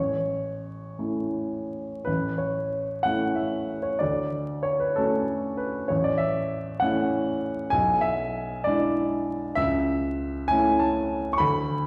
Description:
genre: classical, romantic character piece for solo piano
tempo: 54-69 BPM (dotted quarters)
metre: 6/8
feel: rubato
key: A major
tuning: A4 = 440 Hz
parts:
  - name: warm baby grand piano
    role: solo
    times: 0.0-11.9 s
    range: A1 to C#6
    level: -26 LUFS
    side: equal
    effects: none
room: wet recital hall reverb, RT60 1.5 s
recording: heard from further back in the room, vinyl crackle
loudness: -26 LUFS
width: mono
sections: 0.0-2.1 A section; 2.1-11.9 A section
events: none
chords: 0.0 A; 4.0 Dmaj7; 5.9 A; 7.7 E7/B; 9.6 A/C#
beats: 0.98 | 2.07 3.05 | 4.00 4.97 | 5.90 6.82 | 7.73 8.67 | 9.59 10.51 | 11.40

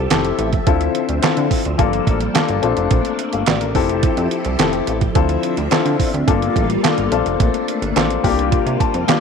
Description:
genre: early-eighties boogie funk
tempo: 107 BPM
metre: 4/4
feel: straight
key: F major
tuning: A4 = 439 Hz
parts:
  - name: phased string machine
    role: sustained chords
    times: 0.0-9.2 s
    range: C3 to E5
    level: -23 LUFS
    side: equal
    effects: ensemble chorus, phaser
  - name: chorused synth bass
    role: bass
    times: 0.0-9.0 s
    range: F1 to D3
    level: -22 LUFS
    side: right 1 dB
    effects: none
  - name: warm baby grand piano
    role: accompaniment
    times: 0.1-9.2 s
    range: Bb3 to A5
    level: -19 LUFS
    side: left 12 dB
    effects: tube saturation
  - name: detuned 8-bit digital drum machine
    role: drums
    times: 0.1-9.2 s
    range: handclaps, hi-hat, kick drum, snare drum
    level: -19 LUFS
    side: right 4 dB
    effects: none
room: light reverb, digital ambience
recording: 1960s-style stereo, faint mains hum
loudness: -15 LUFS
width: side -6 dB against mid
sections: 0.0-9.2 A section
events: grand piano fill 8.5-9.2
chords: 0.0 Fmaj9; 0.7 Dm9; 1.8 Gm9; 2.6 Bbmaj9; 3.8 Fmaj9; 5.2 Dm9; 6.3 Gm9; 7.1 Bbmaj9; 8.2 C7sus4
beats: 0.11 | 0.67 1.23 1.79 2.35 | 2.91 3.47 4.03 4.59 | 5.16 5.72 6.28 6.84 | 7.40 7.96 8.52 9.08

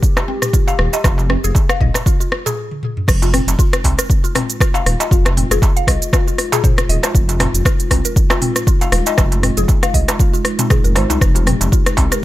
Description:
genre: afro house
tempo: 118 BPM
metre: 4/4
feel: swing 55% on 16ths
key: F minor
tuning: A4 = 444 Hz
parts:
  - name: dark analog pad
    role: sustained chords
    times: 0.0-12.2 s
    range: Ab3 to G4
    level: -26 LUFS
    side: left 1 dB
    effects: chorus, sidechain pumping
  - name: deep house drum kit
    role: drums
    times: 0.0-12.2 s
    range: crash cymbal, hi-hat, rim click, shaker, toms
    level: -19 LUFS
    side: equal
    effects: none
  - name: electronic kick drum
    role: drums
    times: 0.0-12.1 s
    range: none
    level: -14 LUFS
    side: equal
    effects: none
  - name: mallet-like synth pluck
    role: arpeggios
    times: 0.2-12.2 s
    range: C4 to F5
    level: -23 LUFS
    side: left 2 dB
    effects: phaser, lush chorus, sidechain pumping, tape echo
  - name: darbuka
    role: percussion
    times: 0.2-12.1 s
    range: none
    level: -25 LUFS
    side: right 2 dB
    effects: none
  - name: dark detuned saw bass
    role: bass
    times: 0.8-12.1 s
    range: Eb1 to C2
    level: -18 LUFS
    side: equal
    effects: sidechain pumping
room: digital ambience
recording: none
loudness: -13 LUFS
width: side -15 dB against mid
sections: 0.0-3.1 A section; 3.1-12.2 B section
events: stop 2.6-3.1; drum fill 2.7-3.1; drop 3.1-12.2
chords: 0.0 Fm7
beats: 0.03 0.54 | 1.04 1.55 2.06 2.57 | 3.08 3.59 4.10 4.60 | 5.11 5.62 6.13 6.64 | 7.15 7.66 8.16 8.67 | 9.18 9.69 10.20 10.71 | 11.21 11.72 12.23

